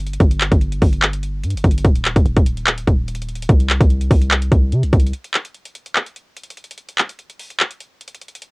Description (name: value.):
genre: hip hop, trap.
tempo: 146 BPM.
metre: 4/4.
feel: half-time.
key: unclear.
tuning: A4 = 440 Hz.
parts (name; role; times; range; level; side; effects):
warm 808-style bass; bass; 0.0-5.1 s; Eb1 to C3; -19 LUFS; equal; none.
trap drum kit; drums; 0.0-8.5 s; handclaps, hi-hat, kick drum; -15 LUFS; equal; cassette tape.
room: little or no reverb.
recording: home recording on cassette.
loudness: -15 LUFS.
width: side -29 dB against mid.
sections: 0.0-5.1 A section; 5.1-8.5 B section.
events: break 5.1-8.5.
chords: none.